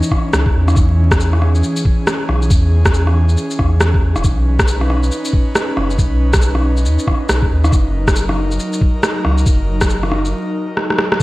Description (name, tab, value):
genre	future garage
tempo	138 BPM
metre	4/4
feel	swing 61% on 16ths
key	unclear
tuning	A4 = 440 Hz
part	airy breathy pad	sustained chords	0.0-11.2 s	E3 to B4	-21 LUFS	equal	chorus, sidechain pumping
part	electronic shaker and rim click	drums	0.0-11.2 s	none	-19 LUFS	equal	none
part	electronic kick drum	drums	0.1-11.2 s	none	-15 LUFS	equal	none
part	soft dub sub bass	bass	0.3-11.2 s	E1 to E2	-15 LUFS	equal	sidechain pumping
room	little or no reverb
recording	vinyl crackle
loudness	-13 LUFS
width	side -19 dB against mid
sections	0.0-11.2 A section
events	break 10.3-11.2; drum fill 10.8-11.2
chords	0.0 C#madd9; 0.8 E6; 4.2 Badd9; 7.7 F#6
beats	0.33 | 0.77 1.20 1.64 2.07 | 2.51 2.94 3.38 3.81 | 4.25 4.68 5.12 5.55 | 5.99 6.42 6.86 7.29 | 7.73 8.16 8.60 9.03 | 9.46 9.90 10.33 10.77 | 11.20